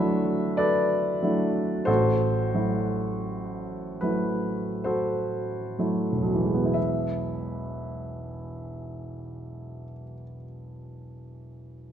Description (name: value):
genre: classical, impressionist solo piano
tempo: 30-50 BPM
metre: 3/4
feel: rubato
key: E major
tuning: A4 = 440 Hz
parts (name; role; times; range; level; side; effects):
- warm baby grand piano; solo; 0.0-11.9 s; E1 to E5; -25 LUFS; equal; none
room: moderate scoring stage reverb, RT60 1.5 s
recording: none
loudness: -24 LUFS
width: side -9 dB against mid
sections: 0.0-6.8 A section; 6.8-11.9 B section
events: slowing down 0.0-6.8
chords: 0.0 D69; 1.9 Am6; 6.8 E